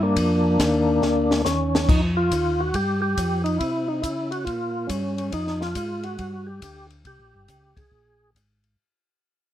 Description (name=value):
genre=soul jazz organ trio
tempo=139 BPM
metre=4/4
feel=swing 66% on 8ths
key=unclear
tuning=A4 = 440 Hz
part: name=percussive tonewheel organ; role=melody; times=0.0-8.3 s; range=Bb3 to Ab4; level=-24 LUFS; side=equal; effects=slow rotary speaker, overdrive, chorus vibrato
part: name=tonewheel organ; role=bass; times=0.0-8.8 s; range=G1 to Db3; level=-26 LUFS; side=equal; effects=chorus vibrato, slow rotary speaker
part: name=compact cocktail drum kit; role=drums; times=0.2-8.7 s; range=crash cymbal, hi-hat, kick drum, ride cymbal, snare drum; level=-26 LUFS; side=left 1 dB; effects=none
room=light reverb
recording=none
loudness=-20 LUFS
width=side -12 dB against mid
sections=0.0-1.9 A section; 1.9-8.8 B section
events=drum fill 1.0-1.9; fade-out 1.9-8.8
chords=0.2 Bb; 1.9 Ebmadd9; 2.7 Ebadd9; 3.6 Cdim; 4.5 Bb5; 5.3 Fm; 6.2 G5; 7.0 C5; 7.9 Absus2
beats=| 0.16 0.59 1.02 1.45 | 1.88 2.31 2.74 3.17 | 3.60 4.03 4.46 4.89 | 5.33 5.76 6.19 6.62 | 7.05 7.48 7.91 8.35